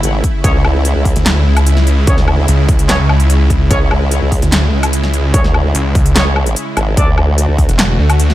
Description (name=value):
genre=heavy wobble dubstep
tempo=147 BPM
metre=4/4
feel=half-time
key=unclear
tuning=A4 = 440 Hz
part: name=supersaw pad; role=sustained chords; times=0.0-8.3 s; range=C#3 to F#4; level=-20 LUFS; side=equal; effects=sidechain pumping
part: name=formant-sweep wobble bass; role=bass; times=0.0-7.7 s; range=G#1 to D2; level=-14 LUFS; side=equal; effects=chorus, overdrive
part: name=big-room dance drum kit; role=drums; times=0.0-8.3 s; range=handclaps, hi-hat, snare drum, woodblock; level=-17 LUFS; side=left 1 dB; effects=overdrive
part: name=electronic kick drum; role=drums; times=0.2-7.7 s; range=none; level=-14 LUFS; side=equal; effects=overdrive
part: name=warm brass ensemble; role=stabs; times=0.4-7.1 s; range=C#4 to D5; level=-23 LUFS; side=equal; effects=ping-pong delay
part: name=snarling distorted saw bass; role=bass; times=1.2-8.3 s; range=E1 to D2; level=-12 LUFS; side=equal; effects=distortion, overdrive
room=digital ambience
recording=dark, warm production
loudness=-10 LUFS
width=side -15 dB against mid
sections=0.0-8.3 A section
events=break 6.6-7.0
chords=0.4 C#m; 7.0 D